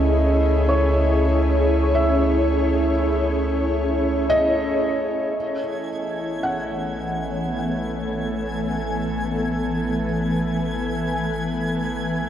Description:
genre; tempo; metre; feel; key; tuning
ambient; free time; none; none; A lydian; A4 = 442 Hz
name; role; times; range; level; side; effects
ethereal airy pad; sustained chords; 0.0-12.3 s; E3 to C#5; -22 LUFS; equal; ensemble chorus, built-in reverb
felt-muted upright piano; arpeggios; 0.0-12.3 s; C#5 to F#5; -26 LUFS; equal; diffuse ambient delay
deep rumbling drone; bass; 0.0-12.3 s; A1 to C#2; -25 LUFS; equal; built-in reverb
pedal harmonium; drone; 0.0-12.3 s; A3 to E4; -32 LUFS; equal; none
twinkling granular texture; texture; 5.6-12.3 s; G#5 to G#6; -32 LUFS; left 1 dB; built-in reverb
room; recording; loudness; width
wet cathedral reverb, RT60 5.7 s; dark, warm production; -20 LUFS; side -10 dB against mid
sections
0.0-5.4 A section; 5.4-12.3 B section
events
none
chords
0.0 C#madd9; 5.4 Asus2

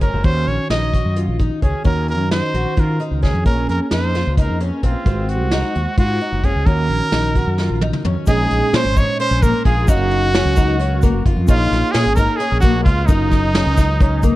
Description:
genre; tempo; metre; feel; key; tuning
progressive instrumental, band music in an uneven meter; 262 BPM (eighths); 7/8; straight; Eb dorian; A4 = 440 Hz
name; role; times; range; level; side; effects
brilliant trumpet; melody; 0.0-14.4 s; Eb4 to Eb5; -22 LUFS; right 1 dB; tape echo
bell-like tine electric piano; accompaniment; 0.0-14.4 s; Bb2 to F5; -25 LUFS; right 4 dB; auto-pan
picked twelve-string acoustic guitar; arpeggios; 0.0-14.4 s; Bb3 to Gb4; -25 LUFS; left 5 dB; none
fretless electric bass; bass; 0.0-14.3 s; Gb1 to Eb3; -19 LUFS; equal; none
vintage brush drum kit; drums; 0.0-14.3 s; hi-hat, kick drum, snare drum, toms; -17 LUFS; equal; none
warm cor anglais; second line; 8.3-14.4 s; Eb4 to Db5; -26 LUFS; right 4 dB; none
egg shaker; percussion; 8.3-14.4 s; none; -38 LUFS; left 7 dB; none
room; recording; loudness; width
small room ambience; dark, warm production; -14 LUFS; side -16 dB against mid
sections
0.0-8.3 A section; 8.3-14.4 B section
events
drum fill 7.6-8.3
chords
0.2 Ebm7; 3.5 Bbm7; 5.1 Ab7; 6.7 Ebm7; 8.3 Bbm7; 9.9 Ebm9/Gb; 11.5 Bbm7; 13.1 Ebm9/Gb

